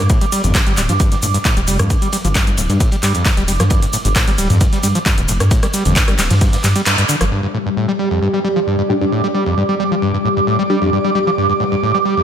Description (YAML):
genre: driving peak-time techno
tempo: 133 BPM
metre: 4/4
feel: straight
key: unclear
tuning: A4 = 440 Hz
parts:
  - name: screaming distorted acid line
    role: riff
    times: 0.0-12.2 s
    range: F2 to G3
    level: -19 LUFS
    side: equal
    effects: distortion, chorus, sidechain pumping, ping-pong delay
  - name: dark detuned saw bass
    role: bass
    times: 0.0-7.3 s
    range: D1 to G2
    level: -16 LUFS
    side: equal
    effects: sidechain pumping
  - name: airy breathy pad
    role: texture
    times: 0.0-12.2 s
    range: G3 to D6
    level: -20 LUFS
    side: right 1 dB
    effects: chorus, phaser, sidechain pumping
  - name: crunchy breakbeat drum kit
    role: drums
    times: 0.1-12.2 s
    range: hi-hat, ride cymbal, snare drum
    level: -33 LUFS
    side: equal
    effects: none
  - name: electronic kick drum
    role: drums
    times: 0.1-6.5 s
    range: none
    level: -15 LUFS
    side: equal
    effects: none
  - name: techno drum kit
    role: drums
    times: 0.1-7.3 s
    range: handclaps, hi-hat, rim click, shaker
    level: -19 LUFS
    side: equal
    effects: none
  - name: wavetable chord stab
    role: stabs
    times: 8.9-10.9 s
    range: G3 to G4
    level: -21 LUFS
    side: left 1 dB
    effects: sidechain pumping, ping-pong delay
room: moderate plate reverb, RT60 1.7 s, small room ambience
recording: dreamy mix soaked in reverb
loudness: -13 LUFS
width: side -9 dB against mid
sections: 0.0-7.3 A section; 7.3-12.2 B section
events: kick drops out 6.9-7.3; band accent 6.9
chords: 0.0 G5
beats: | 0.10 0.55 1.00 1.45 | 1.90 2.35 2.81 3.26 | 3.71 4.16 4.61 5.06 | 5.51 5.96 6.41 6.87 | 7.32 7.77 8.22 8.67 | 9.12 9.57 10.02 10.47 | 10.93 11.38 11.83